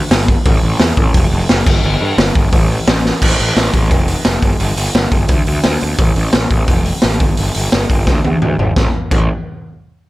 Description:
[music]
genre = punk rock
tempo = 173 BPM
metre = 4/4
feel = straight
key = unclear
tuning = A4 = 441 Hz
[part]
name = fuzz picked electric bass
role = bass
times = 0.1-9.3 s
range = F1 to G2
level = -16 LUFS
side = equal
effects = overdrive
[part]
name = raw garage drum kit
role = drums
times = 0.1-9.2 s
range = crash cymbal, hi-hat, kick drum, snare drum, toms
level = -13 LUFS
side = equal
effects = none
[sound]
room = little or no reverb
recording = none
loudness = -11 LUFS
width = side -18 dB against mid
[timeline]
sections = 0.0-3.2 A section; 3.2-8.8 B section; 8.8-10.1 C section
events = drum fill 3.0, 8.1-8.8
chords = none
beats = 0.10 | 0.45 0.79 1.14 1.48 | 1.83 2.17 2.52 2.86 | 3.21 3.56 3.90 4.25 | 4.59 4.94 5.29 5.63 | 5.98 6.33 6.67 7.02 | 7.37 7.72 8.07 8.41 | 8.76 9.11

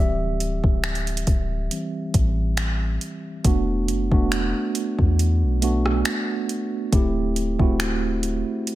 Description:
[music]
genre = contemporary R&B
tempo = 69 BPM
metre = 4/4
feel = swing 54% on 16ths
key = unclear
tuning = A4 = 440 Hz
[part]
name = mellow tine electric piano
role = accompaniment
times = 0.0-8.8 s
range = E3 to E5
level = -25 LUFS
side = right 2 dB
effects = slow stereo tremolo
[part]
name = clean 808-style bass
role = bass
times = 0.0-8.4 s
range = D1 to E2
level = -23 LUFS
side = equal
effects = none
[part]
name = smooth R&B drum kit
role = drums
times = 0.4-8.8 s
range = finger snaps, hi-hat, kick drum, rim click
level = -23 LUFS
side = equal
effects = none
[sound]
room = little or no reverb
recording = none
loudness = -20 LUFS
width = side -15 dB against mid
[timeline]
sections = 0.0-3.4 A section; 3.4-8.8 B section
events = tine electric piano solo 0.0-3.4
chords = 0.0 D9sus4; 3.4 E9sus4; 6.9 D9sus4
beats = 0.84 1.71 2.58 | 3.45 4.32 5.19 6.06 | 6.92 7.79 8.66

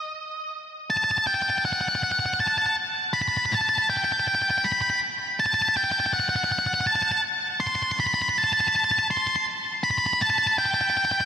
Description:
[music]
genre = rock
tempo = 54 BPM (dotted quarters)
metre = 6/8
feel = straight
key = unclear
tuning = A4 = 439 Hz
[part]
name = octave-fuzz lead guitar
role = melody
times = 0.0-11.3 s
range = D#5 to C6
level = -21 LUFS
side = equal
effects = distortion, diffuse ambient delay
[sound]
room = wet huge ambient reverb, RT60 4.6 s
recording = dreamy mix soaked in reverb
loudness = -21 LUFS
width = side -9 dB against mid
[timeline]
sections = 0.5-11.3 A section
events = build-up 0.5-11.3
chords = none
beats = | 0.53 1.65 | 2.77 3.88 | 5.00 6.12 | 7.23 8.35 | 9.46 10.57

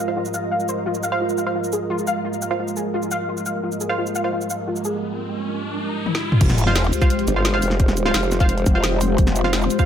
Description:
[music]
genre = dark technical drum and bass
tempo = 173 BPM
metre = 4/4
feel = straight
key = F minor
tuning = A4 = 440 Hz
[part]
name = dark analog pad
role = sustained chords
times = 0.0-9.9 s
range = Ab3 to C5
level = -26 LUFS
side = equal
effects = chorus, sidechain pumping
[part]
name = soft round pluck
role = arpeggios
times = 0.0-5.0 s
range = F4 to F5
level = -26 LUFS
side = left 3 dB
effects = ensemble chorus, sidechain pumping, dub echo
[part]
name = ethereal airy pad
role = texture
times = 0.0-5.0 s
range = F4 to Eb5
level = -29 LUFS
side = right 2 dB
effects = ensemble chorus, built-in reverb, sidechain pumping
[part]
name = filtered dub chord stab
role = stabs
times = 0.1-4.4, 6.7-9.9 s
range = F4 to F5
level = -26 LUFS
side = right 2 dB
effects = chorus, dub echo
[part]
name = drum and bass drum kit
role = drums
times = 0.3-9.9 s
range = crash cymbal, hi-hat, shaker, snare drum, toms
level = -24 LUFS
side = equal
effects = none
[part]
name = riser and sub drop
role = sound effects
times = 5.1-7.8 s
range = none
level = -26 LUFS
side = equal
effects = none
[part]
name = growl bass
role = bass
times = 6.4-9.7 s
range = F1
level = -21 LUFS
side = equal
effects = chorus
[part]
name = electronic kick drum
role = drums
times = 6.4-9.9 s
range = none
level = -17 LUFS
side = equal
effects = none
[part]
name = formant-sweep wobble bass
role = bass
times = 7.3-8.6 s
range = F1 to G1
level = -21 LUFS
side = equal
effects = chorus
[sound]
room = light reverb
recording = none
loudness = -18 LUFS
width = side -9 dB against mid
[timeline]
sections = 0.0-6.4 A section; 6.4-9.9 B section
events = filter sweep on analog synth pad 0.0-6.4; filter sweep on synth stab 0.0-6.4; riser 5.1-6.4; drum fill 6.1-6.4; drop 6.4-9.9; impact 6.4-7.8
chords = 0.0 Fmadd9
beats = 0.17 0.51 | 0.86 1.21 1.55 1.90 | 2.25 2.59 2.94 3.29 | 3.63 3.98 4.33 4.67 | 5.02 5.37 5.72 6.06 | 6.41 6.76 7.10 7.45 | 7.80 8.14 8.49 8.84 | 9.18 9.53

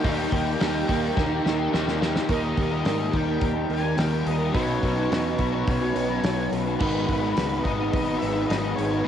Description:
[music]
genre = rock, shoegaze and dream pop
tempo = 106 BPM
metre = 4/4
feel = straight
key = unclear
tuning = A4 = 441 Hz
[part]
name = octave-fuzz lead guitar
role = melody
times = 0.0-9.1 s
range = B4 to G#5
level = -34 LUFS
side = left 2 dB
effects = distortion, cassette tape, analog delay
[part]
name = picked twelve-string acoustic guitar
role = arpeggios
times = 0.0-9.1 s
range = D#3 to G4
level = -33 LUFS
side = right 9 dB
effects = ensemble chorus, cassette tape, analog delay
[part]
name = electric guitar through a small old amp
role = riff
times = 0.0-9.1 s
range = G#2 to A#4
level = -31 LUFS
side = right 10 dB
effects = reverse reverb, cassette tape
[part]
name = overdriven electric guitar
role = riff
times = 0.0-9.1 s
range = G#2 to D#4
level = -28 LUFS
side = equal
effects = cassette tape
[part]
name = overdriven semi-hollow guitar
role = riff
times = 0.0-9.1 s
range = B2 to B4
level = -28 LUFS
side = left 8 dB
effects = ensemble chorus, cassette tape
[part]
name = fingered electric bass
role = bass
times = 0.0-9.0 s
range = G#1 to G#2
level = -31 LUFS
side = equal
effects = none
[part]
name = loose indie drum kit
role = drums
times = 0.0-8.9 s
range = crash cymbal, hi-hat, kick drum, snare drum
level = -28 LUFS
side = equal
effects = cassette tape
[sound]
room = light reverb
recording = home recording on cassette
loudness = -22 LUFS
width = side -9 dB against mid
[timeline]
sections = 0.0-2.3 A section; 2.3-9.1 B section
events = drum fill 1.2-2.3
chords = 0.0 D#; 4.6 Badd9; 6.8 G#m7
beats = | 0.04 0.60 1.17 1.73 | 2.29 2.86 3.42 3.99 | 4.55 5.12 5.68 6.24 | 6.81 7.37 7.93 8.50 | 9.06

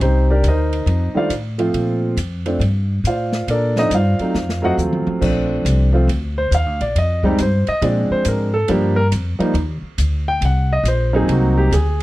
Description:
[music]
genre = jazz piano trio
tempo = 138 BPM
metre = 4/4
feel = swing 65% on 8ths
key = Bb major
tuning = A4 = 440 Hz
[part]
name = warm concert grand piano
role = melody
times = 0.0-12.0 s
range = Eb3 to G5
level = -19 LUFS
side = equal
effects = none
[part]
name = upright bass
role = bass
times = 0.0-12.0 s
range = Bb1 to Bb2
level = -18 LUFS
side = equal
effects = none
[part]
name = open jazz drum kit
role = drums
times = 0.0-12.0 s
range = crash cymbal, hi-hat, kick drum, ride cymbal, snare drum, toms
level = -29 LUFS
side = right 1 dB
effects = none
[sound]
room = small room ambience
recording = dry, close 1970s-style studio recording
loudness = -15 LUFS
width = side -17 dB against mid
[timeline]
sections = 0.0-5.2 A section; 5.2-12.0 B section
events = drum fill 4.4-5.2; grand piano solo 5.2-12.0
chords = 0.0 Cm9; 0.9 F13; 1.7 Bbmaj9; 4.4 F7b9; 5.2 Bbmaj9; 7.0 F7sus2; 7.8 Bb7; 8.7 Ebmaj9; 10.4 Ab9/Bb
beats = | 0.01 0.45 0.88 1.31 | 1.75 2.18 2.62 3.05 | 3.48 3.92 4.35 4.79 | 5.22 5.65 6.09 6.52 | 6.95 7.39 7.82 8.25 | 8.69 9.12 9.55 9.98 | 10.42 10.85 11.29 11.72

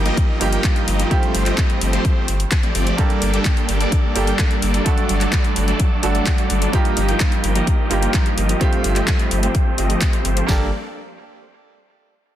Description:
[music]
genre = EDM, festival progressive house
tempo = 128 BPM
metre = 4/4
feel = straight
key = G minor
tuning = A4 = 440 Hz
[part]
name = clear baby grand piano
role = accompaniment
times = 0.0-10.7 s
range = G2 to A4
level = -24 LUFS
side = right 4 dB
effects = vintage 12-bit sampler grit, sidechain pumping, digital delay
[part]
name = supersaw chords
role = riff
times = 0.0-10.7 s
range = F3 to G5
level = -23 LUFS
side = equal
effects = sidechain pumping, low-pass filter, digital delay
[part]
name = saturated sub bass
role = bass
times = 0.0-10.7 s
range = G1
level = -21 LUFS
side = equal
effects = sidechain pumping
[part]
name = house drum kit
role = drums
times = 0.1-10.5 s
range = handclaps, hi-hat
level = -25 LUFS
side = left 2 dB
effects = none
[part]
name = house drum kit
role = drums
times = 0.2-10.6 s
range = kick drum, snare drum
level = -18 LUFS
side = equal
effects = none
[sound]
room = light reverb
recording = dense, heavily limited modern master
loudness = -16 LUFS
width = side -12 dB against mid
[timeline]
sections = 0.0-10.5 A section; 10.5-12.4 B section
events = filter sweep on supersaw synth 0.0-10.5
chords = 0.0 Ebadd9/G; 1.1 Fadd9/G; 3.0 Gmadd9; 4.9 D/G; 6.7 Ebadd9/G; 8.6 Fadd9/G; 10.5 Gmadd9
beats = 0.17 0.64 | 1.11 1.58 2.05 2.52 | 2.98 3.45 3.92 4.39 | 4.86 5.33 5.80 6.27 | 6.74 7.20 7.67 8.14 | 8.61 9.08 9.55 10.02 | 10.48

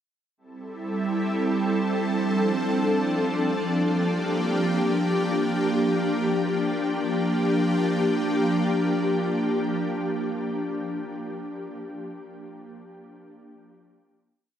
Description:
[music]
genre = hip hop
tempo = free time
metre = none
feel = none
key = G dorian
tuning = A4 = 440 Hz
[part]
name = ethereal airy pad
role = solo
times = 0.6-10.9 s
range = F3 to A4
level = -23 LUFS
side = equal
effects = ensemble chorus, built-in reverb
[sound]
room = wet huge ambient reverb, RT60 8.8 s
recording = none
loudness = -22 LUFS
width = side -9 dB against mid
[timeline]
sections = 0.4-6.9 verse; 6.9-10.2 final chord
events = none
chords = 0.4 Am7; 2.0 F6; 3.6 Gm7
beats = free time

